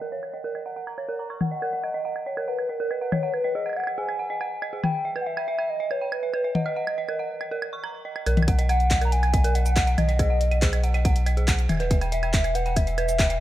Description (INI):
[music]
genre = IDM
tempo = 140 BPM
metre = 4/4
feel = straight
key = B major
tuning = A4 = 439 Hz
[part]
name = dark detuned synth bell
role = arpeggios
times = 0.0-13.4 s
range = G#4 to C#6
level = -31 LUFS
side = right 4 dB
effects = chorus, low-pass filter, tape echo
[part]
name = booming analog drum machine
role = drums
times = 0.2-13.4 s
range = handclaps, hi-hat, shaker, toms, woodblock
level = -29 LUFS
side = left 1 dB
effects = none
[part]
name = warbly nostalgic lead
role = melody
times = 1.4-13.4 s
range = A#4 to A#5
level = -27 LUFS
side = equal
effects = chorus, tape echo
[part]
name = warm sub bass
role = bass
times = 8.3-13.4 s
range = E1 to B1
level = -23 LUFS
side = equal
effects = none
[part]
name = electronic kick drum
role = drums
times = 8.5-13.3 s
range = none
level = -23 LUFS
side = equal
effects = none
[sound]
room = light reverb, digital ambience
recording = low-pass filter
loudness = -22 LUFS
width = side -14 dB against mid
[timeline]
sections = 0.0-8.3 A section; 8.3-13.4 B section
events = filter sweep on synth bell 0.0-8.3; filter sweep 0.0-8.3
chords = 0.0 D#m7; 1.4 Bmaj7/A#; 3.1 G#5; 4.8 Em; 6.5 D#m; 8.3 B; 10.0 G#m7/B (rootless); 11.7 Em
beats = 0.12 0.55 0.98 | 1.41 1.84 2.26 2.69 | 3.12 3.55 3.98 4.41 | 4.84 5.26 5.69 6.12 | 6.55 6.98 7.41 7.84 | 8.26 8.69 9.12 9.55 | 9.98 10.41 10.84 11.26 | 11.69 12.12 12.55 12.98